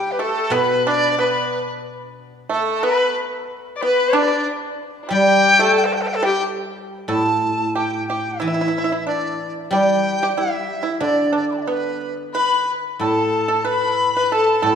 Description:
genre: chinese traditional, Chinese chamber ensemble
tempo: 91 BPM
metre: 2/4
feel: rubato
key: G gong mode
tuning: A4 = 440 Hz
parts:
  - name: dizi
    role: melody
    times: 0.0-14.8 s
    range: A4 to D6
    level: -20 LUFS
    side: left 1 dB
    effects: none
  - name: pipa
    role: second line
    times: 0.0-14.8 s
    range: G3 to B4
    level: -24 LUFS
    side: right 4 dB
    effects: none
  - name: rich erhu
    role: second line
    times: 0.0-6.4, 12.3-14.8 s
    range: D4 to D5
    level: -23 LUFS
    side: left 5 dB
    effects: none
  - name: guzheng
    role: accompaniment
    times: 0.5-2.5, 5.1-14.8 s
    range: A2 to G3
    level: -22 LUFS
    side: right 1 dB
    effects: none
room: wet concert hall reverb, RT60 2.4 s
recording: small room ambience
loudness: -17 LUFS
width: side -7 dB against mid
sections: 0.0-7.1 A section; 7.1-14.8 B section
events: none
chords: none

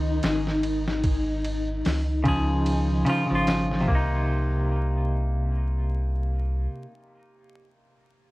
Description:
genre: trip hop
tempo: 74 BPM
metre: 4/4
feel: swing 57% on 16ths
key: C phrygian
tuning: A4 = 440 Hz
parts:
  - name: string machine, cellos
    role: sustained chords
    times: 0.0-3.9 s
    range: Eb4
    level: -29 LUFS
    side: left 1 dB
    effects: ensemble chorus, vintage 12-bit sampler grit, cassette tape
  - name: soft dub sub bass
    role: bass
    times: 0.0-6.7 s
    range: Ab1 to Db2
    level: -26 LUFS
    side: equal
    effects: none
  - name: boom bap sampler-style drum kit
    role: drums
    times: 0.2-4.1 s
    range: hi-hat, kick drum, ride cymbal, snare drum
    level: -29 LUFS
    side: equal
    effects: studio reverb, cassette tape
  - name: semi-hollow electric guitar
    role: accompaniment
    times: 2.2-7.0 s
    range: C3 to Ab4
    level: -26 LUFS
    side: equal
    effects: tremolo, low-pass filter, cassette tape, tape echo
room: light reverb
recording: home recording on cassette, vinyl crackle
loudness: -22 LUFS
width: side -19 dB against mid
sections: 0.0-4.3 A section; 4.3-7.5 B section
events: none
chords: 0.0 Dbadd9; 3.9 Cm7

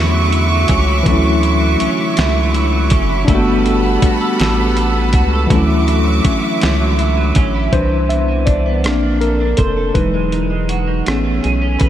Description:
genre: slow six-eight R&B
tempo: 54 BPM (dotted quarters)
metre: 6/8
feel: straight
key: D major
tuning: A4 = 440 Hz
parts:
  - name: clean electric guitar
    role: second line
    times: 0.0-11.9 s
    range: C3 to C5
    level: -20 LUFS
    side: right 5 dB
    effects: analog chorus, tape echo
  - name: mellow tine electric piano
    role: accompaniment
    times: 0.0-11.9 s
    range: E3 to E5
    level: -18 LUFS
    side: left 2 dB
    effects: medium stereo tremolo
  - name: bright studio string section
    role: sustained chords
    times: 0.0-7.7 s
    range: G3 to D6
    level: -21 LUFS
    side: equal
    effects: none
  - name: rubbery square bass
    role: bass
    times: 0.0-11.9 s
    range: E1 to E2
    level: -17 LUFS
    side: equal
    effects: none
  - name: dusty soul sampler-style drum kit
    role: drums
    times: 0.3-11.9 s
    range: hi-hat, kick drum, rim click, snare drum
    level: -18 LUFS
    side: equal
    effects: none
room: moderate huge ambient reverb, RT60 4.1 s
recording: dreamy mix soaked in reverb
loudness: -12 LUFS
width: side -11 dB against mid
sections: 0.0-7.7 A section; 7.7-11.9 B section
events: tine electric piano solo 7.7-11.9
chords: 0.0 Dmaj9; 3.3 Gmaj9; 5.5 Dmaj9; 7.7 Cmaj9; 8.8 Bbmaj9; 10.0 Emaj9; 11.1 Amaj9

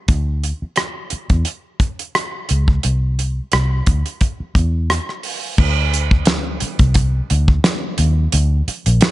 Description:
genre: lush 1970s-style soul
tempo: 87 BPM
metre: 4/4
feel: swing 54% on 16ths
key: unclear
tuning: A4 = 439 Hz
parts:
  - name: vintage muted fingered electric bass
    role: bass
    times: 0.1-9.0 s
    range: Bb1 to Fb2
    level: -16 LUFS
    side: equal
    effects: none
  - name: damped 70s drum kit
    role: drums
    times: 0.1-9.1 s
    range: crash cymbal, hi-hat, kick drum, rim click, snare drum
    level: -17 LUFS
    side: equal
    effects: none
room: little or no reverb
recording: nothing above 10.9 kHz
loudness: -15 LUFS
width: side -16 dB against mid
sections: 0.0-5.6 A section; 5.6-9.1 B section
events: none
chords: none

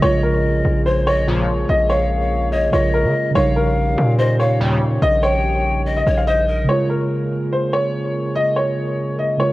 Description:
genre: hip hop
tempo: 144 BPM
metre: 4/4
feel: half-time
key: Bb dorian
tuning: A4 = 439 Hz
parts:
  - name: warm grand piano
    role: melody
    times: 0.0-9.5 s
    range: Bb4 to F5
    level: -20 LUFS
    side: equal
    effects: ping-pong delay
  - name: breathy bright large pan pipes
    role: second line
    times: 0.0-6.7 s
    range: Bb4 to G5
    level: -25 LUFS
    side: left 3 dB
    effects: ping-pong delay
  - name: muted felt-like synth keys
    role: accompaniment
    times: 0.0-9.5 s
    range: Db3 to Bb4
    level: -22 LUFS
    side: right 2 dB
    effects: chorus
  - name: mellow French horn section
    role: sustained chords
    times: 0.0-9.5 s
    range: Db3 to Ab4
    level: -29 LUFS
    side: left 1 dB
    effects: stereo widening
  - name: distorted 808-style bass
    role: bass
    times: 0.0-6.7 s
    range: Bb1 to Db3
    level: -19 LUFS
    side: equal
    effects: distortion
  - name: resonant sweep polysynth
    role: stabs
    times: 1.3-1.4, 4.6-4.8 s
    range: Db2 to G3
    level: -24 LUFS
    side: left 1 dB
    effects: chorus
room: light reverb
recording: worn, warbling old tape, cassette tape, warbly pitch drift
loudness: -16 LUFS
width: side -17 dB against mid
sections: 0.0-6.7 A section; 6.7-9.5 B section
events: none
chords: 0.0 Bbm7; 3.4 Eb7/Bb; 6.7 Bbm7

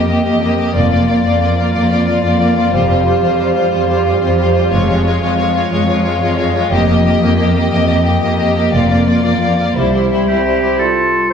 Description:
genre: cinematic, heroic adventure film score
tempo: 120 BPM (dotted quarters)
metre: 12/8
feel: straight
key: unclear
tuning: A4 = 440 Hz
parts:
  - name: warm symphonic violin section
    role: melody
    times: 0.0-10.8 s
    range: C5 to Eb5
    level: -19 LUFS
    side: left 2 dB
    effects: none
  - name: rich studio violin section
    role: second line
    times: 0.0-10.8 s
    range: E4 to G4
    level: -19 LUFS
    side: left 5 dB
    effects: none
  - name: rich symphonic viola section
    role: accompaniment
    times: 0.0-10.8 s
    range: G3 to Bb3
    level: -17 LUFS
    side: right 2 dB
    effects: none
  - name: warm symphonic cello section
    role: bass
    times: 0.0-10.7 s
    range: C2 to F2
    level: -16 LUFS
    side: right 1 dB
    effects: none
  - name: rich studio double bass section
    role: bass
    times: 0.8-10.1 s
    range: F1 to C2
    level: -20 LUFS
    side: right 1 dB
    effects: none
  - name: clear oboe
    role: second line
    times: 10.3-11.3 s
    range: G4 to A4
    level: -16 LUFS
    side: right 3 dB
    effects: none
  - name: mellow clarinet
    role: second line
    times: 10.8-11.3 s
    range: F4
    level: -20 LUFS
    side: right 1 dB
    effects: none
  - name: silver concert flute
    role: second line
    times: 10.8-11.3 s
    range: C6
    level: -19 LUFS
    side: left 4 dB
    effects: none
room: wet recital hall reverb, RT60 1.4 s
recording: recorded in a church or concert hall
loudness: -11 LUFS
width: side -7 dB against mid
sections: 0.0-10.8 A section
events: build-up 0.0-10.8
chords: 0.0 Ebadd9/F; 2.7 Fsus2; 4.7 Db/F; 6.7 Ebadd9/F; 9.8 C; 10.8 F

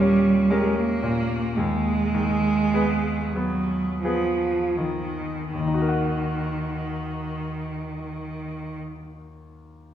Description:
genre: classical, slow romantic movement for piano quintet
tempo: 38-62 BPM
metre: 3/4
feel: rubato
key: Eb minor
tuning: A4 = 440 Hz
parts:
  - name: rich cello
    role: second line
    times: 0.0-8.8 s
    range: Eb3 to Bb3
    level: -24 LUFS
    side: right 3 dB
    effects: none
  - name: bright concert grand piano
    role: accompaniment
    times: 0.0-9.9 s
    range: Eb2 to Gb5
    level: -27 LUFS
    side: left 3 dB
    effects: none
room: wet recital hall reverb, RT60 1.6 s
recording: heard from further back in the room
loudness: -22 LUFS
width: side -10 dB against mid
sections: 0.0-5.5 A section; 5.5-9.9 B section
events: slowing down 0.0-5.5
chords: 0.0 Eb7; 1.6 Abm/Eb; 5.5 Ebm

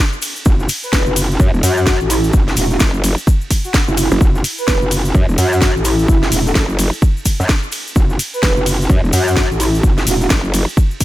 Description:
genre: bass house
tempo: 128 BPM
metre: 4/4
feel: swing 61% on 16ths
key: F# minor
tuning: A4 = 439 Hz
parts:
  - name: cabasa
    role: percussion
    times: 0.1-11.0 s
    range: none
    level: -26 LUFS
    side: left 4 dB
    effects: none
  - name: house drum kit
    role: drums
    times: 0.2-11.0 s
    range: hi-hat, ride cymbal, snare drum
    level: -21 LUFS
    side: equal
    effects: none
  - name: metallic wobble bass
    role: bass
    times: 0.5-10.3 s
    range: E1 to F#2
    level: -16 LUFS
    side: equal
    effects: chorus, sidechain pumping
  - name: electronic kick drum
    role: drums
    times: 0.5-11.0 s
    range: none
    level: -13 LUFS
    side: equal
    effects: none
  - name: breathy flute-like synth lead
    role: melody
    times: 0.8-10.3 s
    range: E4 to B4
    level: -21 LUFS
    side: equal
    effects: wide subtle chorus, digital delay
  - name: growl bass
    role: bass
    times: 0.9-10.7 s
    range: E1 to F#2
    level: -17 LUFS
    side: equal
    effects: chorus, overdrive, sidechain pumping
room: little or no reverb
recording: none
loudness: -12 LUFS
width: side -15 dB against mid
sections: 0.0-11.0 A section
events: none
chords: none

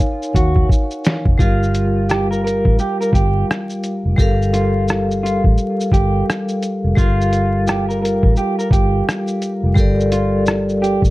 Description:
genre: lo-fi hip hop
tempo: 86 BPM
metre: 4/4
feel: swing 61% on 16ths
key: G minor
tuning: A4 = 440 Hz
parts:
  - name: vibraphone with hard mallets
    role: accompaniment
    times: 0.0-11.1 s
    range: G3 to Ab5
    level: -19 LUFS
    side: left 1 dB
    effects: plate reverb
  - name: lo-fi sampler-style drum kit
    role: drums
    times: 0.0-11.1 s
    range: hi-hat, kick drum, rim click, shaker, snare drum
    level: -16 LUFS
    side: equal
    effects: none
  - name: vintage muted fingered electric bass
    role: bass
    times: 0.3-11.1 s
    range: F1 to Eb2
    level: -19 LUFS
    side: equal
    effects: none
  - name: electric guitar at the edge of break-up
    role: melody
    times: 0.4-11.0 s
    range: F4 to Bb4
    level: -23 LUFS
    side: right 2 dB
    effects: analog delay, plate reverb
room: light reverb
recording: dark, warm production, vinyl crackle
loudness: -14 LUFS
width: side -18 dB against mid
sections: 0.0-11.1 A section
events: drum fill 0.0-1.4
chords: 0.0 Ebsus2; 1.4 Gm9

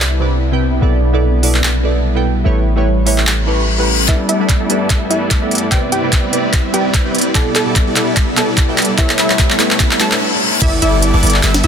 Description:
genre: future bass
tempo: 147 BPM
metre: 4/4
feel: swing 55% on 16ths, half-time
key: G major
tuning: A4 = 435 Hz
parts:
  - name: shimmering ambient pad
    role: sustained chords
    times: 0.0-10.2 s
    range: G2 to E4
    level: -23 LUFS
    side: equal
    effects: chorus, built-in reverb, sidechain pumping
  - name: warm 808-style bass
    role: bass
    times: 0.0-4.1, 10.6-11.7 s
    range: G1 to C2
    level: -15 LUFS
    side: equal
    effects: sidechain pumping
  - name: trap drum kit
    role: drums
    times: 0.0-11.7 s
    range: crash cymbal, handclaps, hi-hat, snare drum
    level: -17 LUFS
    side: equal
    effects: none
  - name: glassy digital keys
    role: accompaniment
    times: 0.2-10.1 s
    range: B2 to G5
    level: -20 LUFS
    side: right 2 dB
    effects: chorus, phaser, sidechain pumping, ping-pong delay
  - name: reverse cymbal, riser and sub drop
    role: sound effects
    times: 3.4-11.7 s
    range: none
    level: -22 LUFS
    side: left 3 dB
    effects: none
  - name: wide unison pluck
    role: melody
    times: 4.1-11.7 s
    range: E4 to A5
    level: -21 LUFS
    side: equal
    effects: sidechain pumping, ping-pong delay
  - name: supersaw chords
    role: riff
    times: 4.1-11.7 s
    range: G3 to E5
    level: -18 LUFS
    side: equal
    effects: sidechain pumping, low-pass filter
  - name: electronic kick drum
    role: drums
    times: 4.1-10.7 s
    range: none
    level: -15 LUFS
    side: equal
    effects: none
  - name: airy dreamy lead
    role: arpeggios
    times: 10.6-11.7 s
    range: D6 to E6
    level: -23 LUFS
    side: left 1 dB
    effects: chorus, sidechain pumping
room: light reverb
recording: dense, heavily limited modern master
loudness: -11 LUFS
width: side -7 dB against mid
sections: 0.0-4.1 A section; 4.1-10.6 B section; 10.6-11.7 C section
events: filter sweep on ambient pad 0.0-4.1; reverse cymbal 3.4-4.1, 9.8-10.6; build-up 4.1-10.6; drum fill 4.1-10.2; filter sweep on supersaw synth 4.1-10.6; filter sweep on synth pluck 4.1-10.6; drop 10.6-11.7; impact 10.6-11.7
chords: 0.0 Cmaj9; 0.8 G69/B; 2.5 A9; 4.1 G69; 5.7 Cmaj9; 7.4 G69/B; 9.0 A9; 10.6 G69

